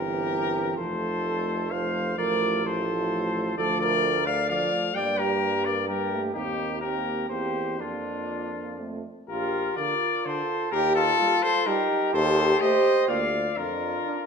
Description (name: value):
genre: classical, brass quintet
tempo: 119-132 BPM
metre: 3/4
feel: rubato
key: F major, Bb major from 3.6 s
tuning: A4 = 440 Hz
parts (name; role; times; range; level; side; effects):
- clear trumpet; melody; 0.0-14.3 s; F4 to G5; -27 LUFS; left 8 dB; none
- mellow flugelhorn; second line; 0.0-14.3 s; D4 to D5; -28 LUFS; right 6 dB; none
- mellow French horn; accompaniment; 0.0-14.3 s; A3 to G4; -32 LUFS; left 3 dB; none
- mellow trombone; accompaniment; 0.0-14.2 s; D3 to D4; -34 LUFS; right 3 dB; none
- warm bass trombone; bass; 0.0-14.0 s; F1 to G2; -32 LUFS; right 1 dB; none
room: wet recital hall reverb, RT60 1.3 s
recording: none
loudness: -23 LUFS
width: side -6 dB against mid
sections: 0.0-9.3 A section; 9.3-14.3 B section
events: none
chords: 0.0 C7/G; 0.8 F; 2.2 F/A; 3.6 Dm; 5.0 Gm; 6.3 Cm7/Eb; 7.3 C7/E; 7.8 Bb/F; 8.8 F; 9.3 Bb; 10.7 Eb; 12.1 Am7b5/Eb; 13.1 Bb/D; 13.6 F5